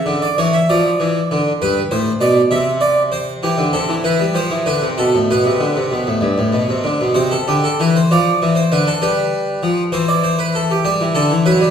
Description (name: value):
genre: classical, baroque-style two-part invention for harpsichord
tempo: 65 BPM (dotted quarters)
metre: 6/8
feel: straight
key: C major from 3.4 s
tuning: A4 = 440 Hz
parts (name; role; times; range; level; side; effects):
- harpsichord; solo; 0.0-11.7 s; G2 to E5; -14 LUFS; equal; none
room: wet recital hall reverb, RT60 1.5 s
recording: heard from further back in the room, faint mains hum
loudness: -14 LUFS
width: side -8 dB against mid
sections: 0.0-7.2 A section; 7.2-11.7 B section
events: none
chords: 0.0 C#m; 0.7 Dm; 1.6 G; 2.5 C; 4.4 Dm7; 5.3 G; 7.2 C; 8.1 Dm7; 9.0 G7; 9.9 C/E; 10.8 G